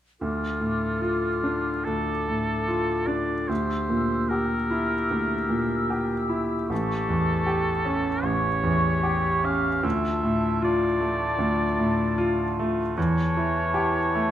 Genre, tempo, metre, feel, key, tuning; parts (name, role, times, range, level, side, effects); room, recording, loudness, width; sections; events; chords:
classical, romantic movement for piano and orchestra; 75 BPM; 4/4; uneven beats, rubato; D minor; A4 = 440 Hz
bright grand piano; melody; 0.2-14.3 s; A1 to G4; -24 LUFS; equal
clear clarinet; second line; 0.2-14.3 s; E4 to A4; -33 LUFS; left 1 dB
mellow large flute ensemble; second line; 0.2-14.3 s; A5 to E6; -33 LUFS; left 1 dB
warm oboe; second line; 0.2-14.3 s; F4 to F5; -28 LUFS; right 1 dB
light reverb; close, detailed microphones, faint mains hum; -22 LUFS; side -11 dB against mid
0.2-14.3 A section
0.2 Dm; 3.5 Edim/D; 6.7 A7; 9.8 Dm; 13.0 A7/E